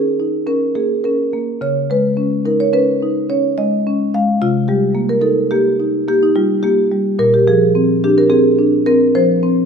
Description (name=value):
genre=classical, contemporary piece for solo marimba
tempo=107 BPM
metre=5/4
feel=straight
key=unclear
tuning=A4 = 441 Hz
part: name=marimba with medium mallets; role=solo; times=0.0-9.7 s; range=Bb2 to F5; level=-13 LUFS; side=equal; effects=none
room=wet recital hall reverb, RT60 1.7 s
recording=minimal, uncompressed stereo recording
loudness=-13 LUFS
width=side -6 dB against mid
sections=0.0-9.7 A section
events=none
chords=0.0 Eb5; 1.6 Dbsus2; 4.4 Cm7; 7.2 Bb9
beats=0.48 1.04 | 1.61 2.17 2.73 3.29 3.85 | 4.41 4.97 5.53 6.09 6.65 | 7.21 7.76 8.32 8.88 9.43